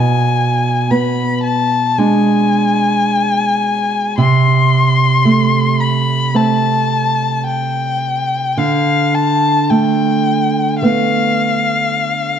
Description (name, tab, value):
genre	romantic duo for violin and classical guitar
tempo	54 BPM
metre	4/4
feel	rubato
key	A minor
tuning	A4 = 439 Hz
part	warm violin	melody	0.0-12.4 s	F5 to C6	-16 LUFS	left 4 dB	none
part	nylon-string guitar	accompaniment	0.0-12.4 s	B2 to D4	-14 LUFS	right 3 dB	none
room	moderate scoring stage reverb, RT60 1.6 s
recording	dark, warm production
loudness	-12 LUFS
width	side -8 dB against mid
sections	0.0-12.4 A section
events	none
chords	0.0 G#dim/B; 4.2 Am/C; 8.6 Bm7b5/D